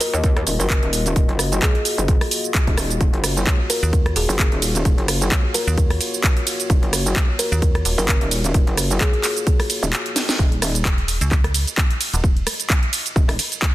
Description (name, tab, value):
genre	bass house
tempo	130 BPM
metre	4/4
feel	swing 56% on 16ths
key	Eb minor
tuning	A4 = 443 Hz
part	kalimba	melody	0.0-9.5 s	Ab4 to Bb4	-28 LUFS	left 1 dB	ping-pong delay
part	dark analog pad	sustained chords	0.0-13.7 s	Bb3 to Eb5	-30 LUFS	left 2 dB	chorus, vintage 12-bit sampler grit, sidechain pumping
part	house drum kit	drums	0.0-13.7 s	handclaps, hi-hat, ride cymbal, rim click, shaker, snare drum	-22 LUFS	right 1 dB	none
part	metallic wobble bass	bass	0.1-13.4 s	Eb1 to Eb2	-22 LUFS	equal	chorus, overdrive, sidechain pumping
part	electronic kick drum	drums	0.2-13.7 s	none	-18 LUFS	equal	none
part	metallic FM bass	bass	3.8-8.0, 10.9-12.5 s	Eb1 to Eb2	-21 LUFS	equal	sidechain pumping
room	digital ambience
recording	dense, heavily limited modern master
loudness	-16 LUFS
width	side -15 dB against mid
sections	0.0-10.4 A section; 10.4-13.7 A section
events	drop 0.0-10.4, 10.4-13.7; drum fill 10.2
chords	0.0 Ebmadd9